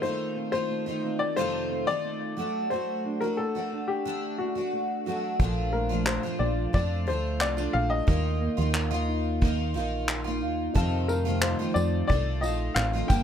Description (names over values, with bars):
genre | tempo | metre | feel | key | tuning
acoustic pop | 89 BPM | 4/4 | straight | unclear | A4 = 440 Hz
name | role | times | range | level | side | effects
clear upright piano | melody | 0.0-13.2 s | F#4 to G5 | -30 LUFS | left 4 dB | tape echo
picked twelve-string acoustic guitar | accompaniment | 0.0-13.2 s | F2 to G4 | -30 LUFS | equal | double-tracked left and right
nylon-string guitar | arpeggios | 0.0-13.2 s | Eb3 to F#4 | -35 LUFS | right 4 dB | tape echo
solid FM bass | bass | 5.4-13.2 s | G1 to F2 | -28 LUFS | equal | none
vintage brush drum kit | drums | 5.4-13.2 s | handclaps, kick drum, tambourine | -26 LUFS | equal | none
reed electric piano | accompaniment | 10.7-13.2 s | D4 to A5 | -38 LUFS | left 2 dB | fast tremolo
room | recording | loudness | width
light reverb | none | -25 LUFS | side -9 dB against mid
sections
0.0-5.4 A section; 5.4-13.2 B section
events
none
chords
0.0 F7; 2.4 D; 5.4 Bbmaj7; 8.1 Ebsus2; 10.8 F7